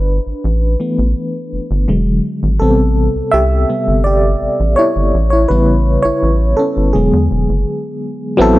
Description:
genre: contemporary R&B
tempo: 83 BPM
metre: 4/4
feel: straight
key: unclear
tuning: A4 = 440 Hz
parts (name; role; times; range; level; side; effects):
- FM electric piano with tremolo; accompaniment; 0.0-8.6 s; C3 to E5; -14 LUFS; equal; none
- rubbery square bass; bass; 0.0-8.6 s; E1 to E2; -14 LUFS; equal; none
room: light reverb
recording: none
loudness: -12 LUFS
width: side -17 dB against mid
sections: 0.0-8.4 A section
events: FM electric piano solo 0.0-8.4; break 7.7-8.4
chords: 0.0 G69; 1.9 E7; 2.6 Am7; 5.1 A7; 6.9 E7

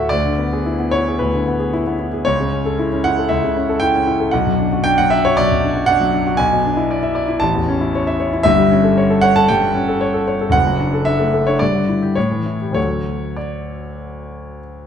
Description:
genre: classical, romantic character piece for solo piano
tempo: 96-119 BPM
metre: 4/4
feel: rubato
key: unclear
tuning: A4 = 440 Hz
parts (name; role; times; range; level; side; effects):
- warm concert grand piano; solo; 0.0-14.9 s; F#1 to A5; -15 LUFS; equal; none
room: wet recital hall reverb, RT60 1.5 s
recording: none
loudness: -14 LUFS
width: side -8 dB against mid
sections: 0.0-14.9 A section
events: none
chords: 0.1 E7/D; 2.3 A/C#; 4.3 Bm; 6.4 E7/B; 7.4 A; 8.5 A7/G; 10.5 D/F#; 11.6 Em7/G; 12.2 A7; 12.8 D

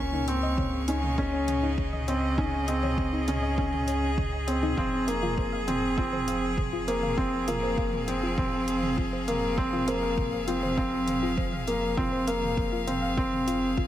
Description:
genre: piano and strings electronica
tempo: 100 BPM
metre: 4/4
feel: straight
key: F minor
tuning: A4 = 440 Hz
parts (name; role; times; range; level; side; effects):
- clear string quartet; sustained chords; 0.0-13.9 s; Db3 to Db6; -32 LUFS; right 1 dB; sidechain pumping
- felt-muted upright piano; riff; 0.0-13.7 s; Bb3 to Db4; -28 LUFS; left 1 dB; ping-pong delay
- warm sub bass; bass; 0.0-13.9 s; F1 to Db2; -33 LUFS; equal; sidechain pumping
- soft round pluck; arpeggios; 0.1-13.8 s; Eb4 to Ab5; -37 LUFS; left 4 dB; chorus, sidechain pumping, ping-pong delay
- deep house drum kit; drums; 0.1-13.9 s; hi-hat, toms; -39 LUFS; right 2 dB; small room ambience
- electronic kick drum; drums; 0.6-13.9 s; none; -31 LUFS; equal; small room ambience
room: moderate echo chamber reverb, RT60 2.3 s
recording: none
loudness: -25 LUFS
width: side -12 dB against mid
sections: 0.0-13.9 A section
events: none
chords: 0.0 Dbsus2; 4.8 Fm

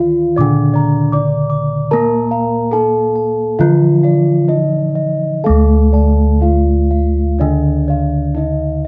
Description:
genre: Javanese gamelan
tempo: 62-84 BPM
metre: 4/4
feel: straight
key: D pelog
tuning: A4 = 436 Hz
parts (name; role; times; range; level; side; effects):
- gamelan-type bronze metallophone; melody; 0.0-8.9 s; D4 to D5; -20 LUFS; equal; slapback echo
- gamelan-type bronze metallophone; accompaniment; 0.0-8.9 s; D3 to Bb3; -20 LUFS; equal; none
- gamelan-type bossed gongs; arpeggios; 0.0-8.9 s; D5 to D6; -28 LUFS; equal; none
- gamelan-type bronze metallophone; arpeggios; 0.0-8.9 s; D5 to D6; -28 LUFS; equal; none
- gamelan-type bossed gongs; bass; 0.4-8.9 s; D2 to Bb4; -18 LUFS; equal; none
room: light reverb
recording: nothing above 7.6 kHz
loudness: -14 LUFS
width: mono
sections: 0.0-5.4 A section; 5.4-8.9 B section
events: none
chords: none

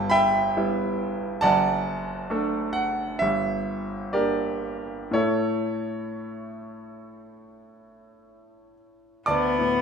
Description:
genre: classical, romantic duo for cello and grand piano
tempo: 57-70 BPM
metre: 4/4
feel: rubato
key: D major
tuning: A4 = 444 Hz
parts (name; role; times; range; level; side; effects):
- clear concert grand piano; accompaniment; 0.0-9.8 s; F#1 to D6; -23 LUFS; right 1 dB; none
- rich cello; melody; 9.3-9.8 s; B3; -23 LUFS; left 4 dB; none
room: moderate recital hall reverb, RT60 1.6 s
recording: minimal, uncompressed stereo recording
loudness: -23 LUFS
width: side -6 dB against mid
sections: 0.0-9.3 A section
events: none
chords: 0.0 Em/G; 1.4 D/F#; 3.2 Gm; 5.2 A; 9.3 D5

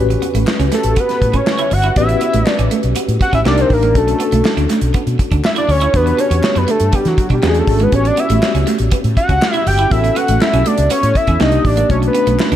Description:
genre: polished 1980s jazz-funk pop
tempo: 121 BPM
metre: 4/4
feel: straight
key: unclear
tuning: A4 = 440 Hz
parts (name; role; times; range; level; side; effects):
- tine electric piano; accompaniment; 0.0-12.6 s; A3 to B4; -20 LUFS; left 2 dB; fast stereo tremolo, analog chorus
- fretless electric bass; bass; 0.0-12.6 s; G1 to E3; -16 LUFS; equal; none
- electric guitar at the edge of break-up; riff; 0.1-12.6 s; G#3 to E4; -23 LUFS; right 6 dB; lush chorus
- modern studio drum kit; drums; 0.1-12.6 s; hi-hat, kick drum, snare drum; -19 LUFS; equal; gated reverb
- group handclap; percussion; 0.5-12.5 s; none; -31 LUFS; left 3 dB; none
- fat analog lead; melody; 0.7-12.5 s; F#4 to G5; -17 LUFS; equal; none
room: light reverb, studio reverb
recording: none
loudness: -12 LUFS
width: side -11 dB against mid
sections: 0.0-12.6 A section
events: analog synth lead solo 0.0-12.6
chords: 0.0 A13; 3.5 Cm7; 4.0 Bm7; 5.9 Em9; 7.4 E13; 7.9 A13; 11.4 Cm7; 11.9 Bm7

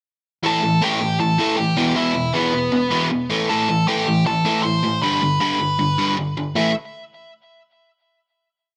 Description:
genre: punk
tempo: 157 BPM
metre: 4/4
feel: straight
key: A minor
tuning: A4 = 440 Hz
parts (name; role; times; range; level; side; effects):
- biting overdriven guitar; riff; 0.4-6.7 s; E2 to A3; -22 LUFS; equal; none
- nasal lead guitar with a parked wah; melody; 0.5-6.7 s; B3 to C6; -24 LUFS; equal; overdrive, delay
room: light reverb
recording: none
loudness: -19 LUFS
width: mono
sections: 0.4-6.6 verse; 6.6-8.1 final chord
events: none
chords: 0.4 A5; 1.8 Em; 3.3 Am; 5.0 G; 6.6 A5

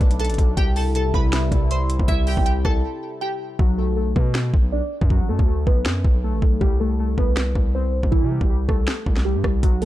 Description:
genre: hip hop, trap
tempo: 159 BPM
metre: 4/4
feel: half-time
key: unclear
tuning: A4 = 439 Hz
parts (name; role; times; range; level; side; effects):
- glassy wavetable pluck; melody; 0.0-9.8 s; E3 to C6; -26 LUFS; equal; chorus, low-pass filter, ping-pong delay
- sweeping resonant pad; sustained chords; 0.0-3.6 s; B2 to E4; -29 LUFS; right 1 dB; chorus, phaser
- hard-hitting 808-style bass; bass; 0.0-9.8 s; A1 to C3; -22 LUFS; equal; none
- trap drum kit; drums; 0.0-9.8 s; finger snaps, hi-hat, kick drum, rim click, snare drum; -20 LUFS; equal; vintage 12-bit sampler grit
room: little or no reverb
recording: dark, warm production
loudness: -18 LUFS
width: side -15 dB against mid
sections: 0.0-3.6 A section; 3.6-9.8 B section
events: break 2.8-3.6; hi-hats muted 3.6-9.6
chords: 0.0 Bm7; 0.6 C; 3.6 Bm7; 6.6 C5

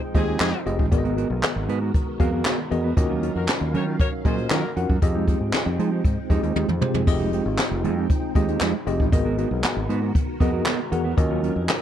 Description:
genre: early-eighties boogie funk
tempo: 117 BPM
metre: 4/4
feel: straight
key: F phrygian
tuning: A4 = 440 Hz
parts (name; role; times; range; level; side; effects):
- soft string machine; sustained chords; 0.0-11.8 s; Eb3 to G5; -32 LUFS; equal; phaser, ensemble chorus
- mellow electric guitar; riff; 0.0-11.7 s; Gb3 to Cb5; -27 LUFS; right 10 dB; wide subtle chorus
- warm horn section; second line; 0.1-4.7 s; Bb3 to Db5; -29 LUFS; left 4 dB; none
- tine electric piano; accompaniment; 0.1-11.8 s; Cb4 to Gb5; -27 LUFS; left 2 dB; overdrive, fast stereo tremolo
- fingered electric bass; bass; 0.1-11.7 s; F1 to F3; -26 LUFS; equal; none
- jazz brush drum kit; drums; 0.1-11.8 s; crash cymbal, handclaps, hi-hat, kick drum, snare drum, toms; -23 LUFS; equal; none
room: little or no reverb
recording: none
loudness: -20 LUFS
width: side -10 dB against mid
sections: 0.0-7.1 A section; 7.1-11.8 A section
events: drum fill 6.6-7.1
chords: 0.0 Fm9; 0.9 Abm9; 3.0 Ebm9; 5.0 Fm9; 9.1 Abm9; 11.2 Ebm9

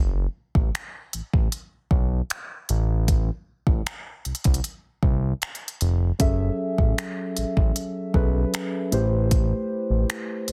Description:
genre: contemporary R&B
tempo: 77 BPM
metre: 4/4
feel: straight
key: unclear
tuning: A4 = 441 Hz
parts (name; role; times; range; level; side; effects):
- smooth synth bass; bass; 0.0-10.5 s; E#1 to C2; -26 LUFS; equal; none
- smooth R&B drum kit; drums; 0.6-10.5 s; finger snaps, hi-hat, kick drum; -26 LUFS; equal; soft clipping on snare
- muted felt-like synth keys; accompaniment; 6.2-10.5 s; F#3 to E5; -29 LUFS; equal; chorus
room: digital ambience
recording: dense, heavily limited modern master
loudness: -24 LUFS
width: mono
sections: 0.0-10.5 A section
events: none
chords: 0.0 F#m; 2.7 Am; 6.2 F#m7; 8.9 Am7

